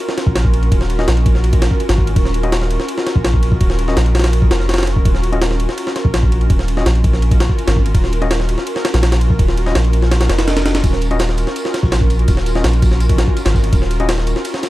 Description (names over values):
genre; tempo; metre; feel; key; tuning
drum and bass, jungle; 166 BPM; 4/4; straight; Eb minor; A4 = 439 Hz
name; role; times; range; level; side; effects
airy breathy pad; sustained chords; 0.0-14.7 s; Db4 to Bb4; -22 LUFS; equal; chorus
jungle sampler-style drum kit; drums; 0.1-14.7 s; kick drum, ride cymbal, snare drum; -16 LUFS; equal; overdrive
soft dub sub bass; bass; 0.3-14.3 s; Eb1 to Bb1; -15 LUFS; equal; none
overdriven tine electric piano; stabs; 1.0-14.1 s; Db4 to Eb5; -26 LUFS; left 3 dB; fast tremolo, vintage 12-bit sampler grit, dub echo
swell; sound effects; 10.3-10.8 s; none; -30 LUFS; right 1 dB; none
crunchy breakbeat drum kit; drums; 10.8-14.7 s; hi-hat, snare drum, tambourine; -34 LUFS; right 1 dB; none
room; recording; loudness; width
small room ambience; dark, warm production; -13 LUFS; side -16 dB against mid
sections
0.0-14.7 A section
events
swell 10.3-10.8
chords
0.0 Ebm9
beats
0.35 | 0.72 1.08 1.44 1.80 | 2.16 2.52 2.88 3.25 | 3.61 3.97 4.33 4.69 | 5.05 5.42 5.78 6.14 | 6.50 6.86 7.22 7.58 | 7.95 8.31 8.67 9.03 | 9.39 9.75 10.11 10.48 | 10.84 11.20 11.56 11.92 | 12.28 12.64 13.01 13.37 | 13.73 14.09 14.45